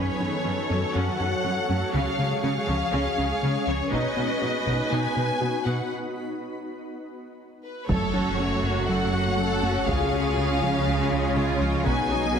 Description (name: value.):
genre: cinematic, hybrid orchestral and electronic film score.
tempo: 121 BPM.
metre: 4/4.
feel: straight.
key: F# dorian.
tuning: A4 = 441 Hz.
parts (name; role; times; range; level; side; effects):
warm symphonic violin section; melody; 0.0-12.4 s; B4 to G#5; -30 LUFS; left 2 dB; none.
rich symphonic viola section; accompaniment; 0.0-12.4 s; A3 to D#5; -31 LUFS; right 2 dB; none.
shimmering ambient pad; sustained chords; 0.0-12.4 s; F#3 to C#5; -30 LUFS; left 1 dB; chorus, built-in reverb.
harp-like synth pluck; arpeggios; 0.0-12.4 s; C#3 to B4; -33 LUFS; right 2 dB; chorus, ping-pong delay.
round analog bass; riff; 0.0-12.4 s; C#2 to B3; -31 LUFS; left 2 dB; none.
rich symphonic cello section; bass; 0.0-12.4 s; F#2 to C#3; -31 LUFS; right 2 dB; none.
taiko ensemble; drums; 3.9-4.9, 7.9-12.3 s; none; -32 LUFS; equal; none.
rich studio violin section; second line; 7.9-12.4 s; D#4 to A4; -31 LUFS; equal; none.
mellow French horn section; sustained chords; 7.9-12.4 s; F#3 to D#4; -33 LUFS; left 4 dB; none.
sub bass with octave; bass; 7.9-12.4 s; F#1 to C#2; -34 LUFS; equal; none.
warm symphonic double bass section; bass; 7.9-12.4 s; F#1 to C#2; -33 LUFS; right 6 dB; none.
impact; sound effects; 7.9-9.9 s; none; -34 LUFS; equal; none.
room: moderate scoring stage reverb, RT60 1.5 s.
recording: heavily compressed radio sound.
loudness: -22 LUFS.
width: side -7 dB against mid.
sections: 0.0-7.9 A section; 7.9-12.4 A section.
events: break 5.9-7.9; impact 7.9-9.9.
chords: 0.0 F#m; 1.9 C#; 3.9 B; 5.9 N.C.; 7.9 F#m; 9.9 C#; 11.9 B.